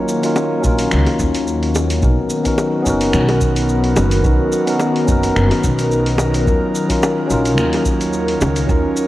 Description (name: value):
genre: sunset chillout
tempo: 108 BPM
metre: 4/4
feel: swing 55% on 16ths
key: Eb minor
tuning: A4 = 440 Hz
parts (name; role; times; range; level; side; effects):
- bright tine electric piano; accompaniment; 0.0-9.1 s; Gb3 to Bb4; -19 LUFS; left 1 dB; auto-pan, ping-pong delay
- airy breathy pad; sustained chords; 0.0-9.1 s; Eb3 to A#4; -20 LUFS; left 1 dB; chorus
- dusty soul sampler-style drum kit; drums; 0.1-9.1 s; cabasa, finger snaps, hi-hat; -26 LUFS; equal; none
- bongos; percussion; 0.4-8.5 s; none; -22 LUFS; equal; none
- upright bass; bass; 0.6-8.8 s; F#1 to Eb2; -18 LUFS; equal; none
- electronic kick drum; drums; 0.6-8.8 s; none; -19 LUFS; equal; none
room: moderate lush hall reverb, RT60 1.9 s, digital ambience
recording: worn, warbling old tape, cassette tape, warbly pitch drift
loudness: -14 LUFS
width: side -15 dB against mid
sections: 0.0-9.1 A section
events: none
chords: 0.0 Ebm7; 2.0 Bmaj7; 6.5 Ebm7